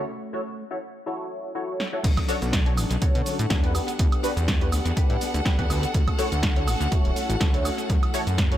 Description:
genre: filtered disco house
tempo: 123 BPM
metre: 4/4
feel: swing 54% on 16ths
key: B minor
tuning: A4 = 440 Hz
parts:
  - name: funky polysynth comp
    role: accompaniment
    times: 0.0-8.6 s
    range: D3 to F#5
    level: -30 LUFS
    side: left 1 dB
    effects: chorus, phaser, sidechain pumping, low-pass filter
  - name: clear chamber violin section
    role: sustained chords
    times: 0.0-8.6 s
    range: A4 to F#5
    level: -34 LUFS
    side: equal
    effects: sidechain pumping, low-pass filter
  - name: mellow electric guitar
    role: riff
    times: 0.0-8.6 s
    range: E3 to A4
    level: -34 LUFS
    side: left 2 dB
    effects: sidechain pumping, low-pass filter, tape echo
  - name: punchy analog drum machine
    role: drums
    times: 1.8-8.6 s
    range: crash cymbal, hi-hat, shaker, snare drum, woodblock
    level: -30 LUFS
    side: right 1 dB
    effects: tape echo
  - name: fat analog bass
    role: bass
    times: 2.0-8.6 s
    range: D1 to B2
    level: -26 LUFS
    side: equal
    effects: sidechain pumping, low-pass filter
  - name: electronic kick drum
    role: drums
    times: 2.0-8.5 s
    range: none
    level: -23 LUFS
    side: equal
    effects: none
room: digital ambience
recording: echo-heavy mix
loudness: -22 LUFS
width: side -12 dB against mid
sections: 0.0-2.0 A section; 2.0-8.6 B section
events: break 0.1-2.0; drum fill 1.8; drop 2.0-8.6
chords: 0.1 F#m7; 2.0 Bm9; 3.7 Em7; 5.9 Dmaj7; 7.9 F#m7

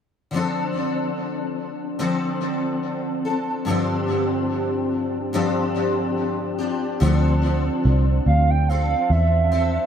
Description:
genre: indie pop, bedroom pop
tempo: 72 BPM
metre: 4/4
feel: swing 55% on 16ths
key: D minor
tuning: A4 = 444 Hz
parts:
  - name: picked steel-string acoustic guitar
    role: accompaniment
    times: 0.3-9.9 s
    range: G2 to A4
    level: -22 LUFS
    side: left 2 dB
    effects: ensemble chorus, vibrato effect, tape echo
  - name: vintage muted picked electric bass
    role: bass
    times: 7.0-9.8 s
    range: C2 to E2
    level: -18 LUFS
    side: right 1 dB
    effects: none
  - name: warbly nostalgic lead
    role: melody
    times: 8.3-9.9 s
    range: E5 to G5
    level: -21 LUFS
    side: right 4 dB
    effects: wide subtle chorus, tape echo
room: light reverb, studio reverb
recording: echo-heavy mix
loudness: -20 LUFS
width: side -8 dB against mid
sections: 0.3-7.0 A section; 7.0-9.9 B section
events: none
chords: 0.3 Dm7; 3.7 G7sus4; 7.0 Dm7

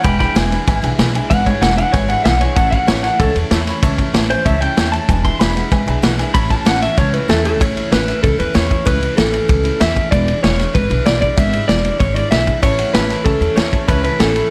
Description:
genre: rockabilly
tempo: 191 BPM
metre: 4/4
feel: straight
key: A major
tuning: A4 = 440 Hz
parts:
  - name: electric guitar through a small old amp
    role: melody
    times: 0.0-14.5 s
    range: A4 to C6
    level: -21 LUFS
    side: equal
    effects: plate reverb, tape echo
  - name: picked steel-string acoustic guitar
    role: accompaniment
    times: 0.0-14.5 s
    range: E2 to E4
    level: -27 LUFS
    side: equal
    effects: none
  - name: upright bass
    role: bass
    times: 0.0-14.4 s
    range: E1 to E2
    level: -21 LUFS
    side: equal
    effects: none
  - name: vintage drum kit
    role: drums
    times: 0.0-14.4 s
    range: kick drum, ride cymbal, snare drum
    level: -19 LUFS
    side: equal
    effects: none
  - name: bright upright piano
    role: accompaniment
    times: 0.1-7.5, 12.6-14.5 s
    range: B4 to B5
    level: -29 LUFS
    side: equal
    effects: plate reverb
room: light reverb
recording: none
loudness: -15 LUFS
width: mono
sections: 0.0-7.6 A section; 7.6-14.5 B section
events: clean electric guitar solo 0.0-7.6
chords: 0.0 E7; 2.6 A; 5.1 E7; 6.3 A; 10.1 E7; 12.6 A

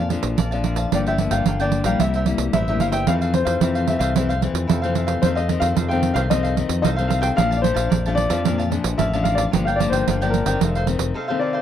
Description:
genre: samba and choro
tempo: 112 BPM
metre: 4/4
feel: straight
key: F major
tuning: A4 = 436 Hz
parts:
  - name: warm baby grand piano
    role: melody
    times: 0.0-11.6 s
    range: Bb4 to G5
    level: -24 LUFS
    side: left 2 dB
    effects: none
  - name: cavaquinho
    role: accompaniment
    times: 0.0-11.6 s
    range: Eb4 to A5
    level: -27 LUFS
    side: right 1 dB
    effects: none
  - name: nylon-string guitar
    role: accompaniment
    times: 0.0-11.6 s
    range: F2 to E4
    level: -25 LUFS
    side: left 6 dB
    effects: none
  - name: fingered electric bass with an envelope filter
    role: bass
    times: 0.0-11.1 s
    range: F1 to F2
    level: -23 LUFS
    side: equal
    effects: none
  - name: pandeiro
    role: percussion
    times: 0.1-11.1 s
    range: none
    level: -23 LUFS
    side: right 10 dB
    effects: none
room: light reverb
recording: dry, close 1970s-style studio recording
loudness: -18 LUFS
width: side -10 dB against mid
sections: 0.0-11.6 A section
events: none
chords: 0.0 Bbmaj7; 0.9 Gm7; 2.0 C7; 3.1 Fmaj7; 5.2 F7; 7.4 Bbmaj7; 9.5 Gm7; 10.6 F7

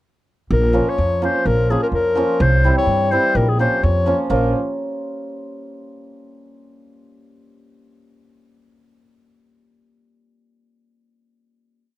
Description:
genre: balkan folk, Balkan wedding band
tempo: 126 BPM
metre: 2/4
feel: straight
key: Bb dorian sharp4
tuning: A4 = 440 Hz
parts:
  - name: warm clarinet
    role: melody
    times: 0.5-4.5 s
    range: Ab4 to Db5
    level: -19 LUFS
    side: left 2 dB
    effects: none
  - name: upright bass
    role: bass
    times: 0.5-4.5 s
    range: Bb1 to G2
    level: -18 LUFS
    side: equal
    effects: none
  - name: hammered dulcimer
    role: accompaniment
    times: 0.7-4.5 s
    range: E3 to F4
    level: -22 LUFS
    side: right 2 dB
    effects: none
room: little or no reverb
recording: dry, close 1970s-style studio recording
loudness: -15 LUFS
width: side -16 dB against mid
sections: 0.5-4.3 A section; 4.3-5.2 final chord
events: none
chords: 0.5 Bbm; 2.4 C; 3.4 Bbm

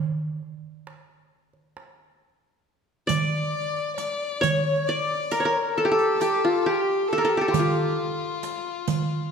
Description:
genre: Arabic maqam ensemble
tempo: 135 BPM (eighths)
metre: 10/8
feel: straight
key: D maqam nahawand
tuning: A4 = 440 Hz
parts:
  - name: qanun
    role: melody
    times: 0.0-9.3 s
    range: F4 to D5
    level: -23 LUFS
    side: equal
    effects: none
  - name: darbuka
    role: percussion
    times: 0.4-9.1 s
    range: none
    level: -28 LUFS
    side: right 5 dB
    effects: none
  - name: rich violin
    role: second line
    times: 3.1-9.3 s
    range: F4 to D5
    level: -28 LUFS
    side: left 4 dB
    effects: none
  - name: riq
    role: percussion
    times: 3.1-9.1 s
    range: none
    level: -36 LUFS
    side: right 6 dB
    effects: none
room: wet recital hall reverb, RT60 1.6 s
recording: none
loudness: -22 LUFS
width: side -6 dB against mid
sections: 0.0-3.1 A section; 3.1-9.3 B section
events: none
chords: none

